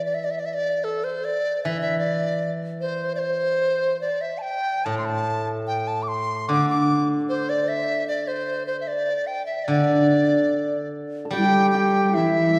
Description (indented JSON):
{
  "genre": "chinese traditional, Chinese chamber ensemble",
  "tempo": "74 BPM",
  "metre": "2/4",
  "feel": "rubato",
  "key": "D shang mode",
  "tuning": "A4 = 440 Hz",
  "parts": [
    { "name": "bright large dizi", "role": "melody", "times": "0.0-12.6 s", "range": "A4 to D6", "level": "-26 LUFS", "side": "equal", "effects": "none" },
    { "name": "steel-string zither", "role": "accompaniment", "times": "0.0-12.6 s", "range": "A2 to G3", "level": "-28 LUFS", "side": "equal", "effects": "none" },
    { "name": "hammered dulcimer", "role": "second line", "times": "11.3-12.6 s", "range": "E4 to A4", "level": "-28 LUFS", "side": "equal", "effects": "none" },
    { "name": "mellow hollow xiao", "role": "second line", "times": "11.3-12.6 s", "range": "E4 to G4", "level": "-27 LUFS", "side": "equal", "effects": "none" },
    { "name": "rich cello", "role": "second line", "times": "11.3-12.6 s", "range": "E3 to G3", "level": "-24 LUFS", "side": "equal", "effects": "none" }
  ],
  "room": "wet concert hall reverb, RT60 2.3 s",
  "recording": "heard from further back in the room",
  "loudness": "-23 LUFS",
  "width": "mono",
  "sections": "0.0-11.3 A section; 11.3-12.6 B section",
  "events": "none",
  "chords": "none",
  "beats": "| 0.05 0.86 | 1.65 2.44 | 3.24 4.04 | 4.87 5.69 | 6.50 7.31 | 8.11 8.90 | 9.69 10.50 | 11.32 12.13"
}